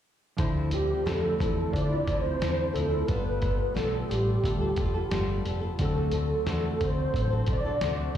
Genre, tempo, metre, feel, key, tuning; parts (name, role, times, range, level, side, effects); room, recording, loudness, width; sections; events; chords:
indie pop, bedroom pop; 89 BPM; 4/4; straight; D minor; A4 = 437 Hz
flamenco guitar; accompaniment; 0.4-8.2 s; D3 to A4; -34 LUFS; left 2 dB; wide subtle chorus, warbly pitch drift, plate reverb, slapback echo
warm analog keys; accompaniment; 0.4-8.2 s; F3 to C5; -39 LUFS; right 3 dB
deep dub picked electric bass; bass; 0.4-8.2 s; F1 to D3; -29 LUFS; equal
lo-fi sampler-style drum kit; drums; 0.4-8.2 s; hi-hat, kick drum, snare drum; -31 LUFS; equal
soft octave-layered synth lead; melody; 0.7-8.1 s; G4 to D5; -30 LUFS; right 1 dB; ensemble chorus, plate reverb, slapback echo, tape echo
light reverb; live gig heard through the venue's PA, recital hall reverb; -25 LUFS; side -10 dB against mid
0.4-8.2 A section
0.4 Dm9; 3.1 G9; 5.8 D7